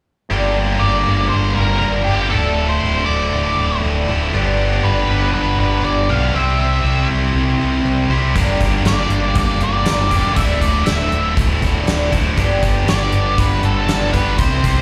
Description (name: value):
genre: classic rock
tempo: 119 BPM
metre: 4/4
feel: straight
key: unclear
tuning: A4 = 439 Hz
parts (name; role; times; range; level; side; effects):
- picked twelve-string acoustic guitar; accompaniment; 0.3-14.8 s; G2 to Bb4; -30 LUFS; equal; plate reverb, slapback echo
- tight distorted guitar; riff; 0.3-14.8 s; D2 to C5; -22 LUFS; equal; distortion, slapback echo
- fuzz fingered electric bass; bass; 0.3-14.8 s; D1 to C2; -21 LUFS; equal; overdrive
- octave-fuzz lead guitar; melody; 0.8-14.8 s; G4 to F5; -24 LUFS; equal; wah, distortion, plate reverb
- gated 80s drum kit; drums; 8.4-14.8 s; hi-hat, kick drum, snare drum; -22 LUFS; equal; none
room: light reverb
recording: live gig heard through the venue's PA, club reverb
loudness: -17 LUFS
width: mono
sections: 0.3-14.8 A section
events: none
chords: 0.3 Gm; 2.3 Dmadd9; 4.3 G; 6.3 C; 8.4 Gm; 10.4 Dmadd9; 12.4 G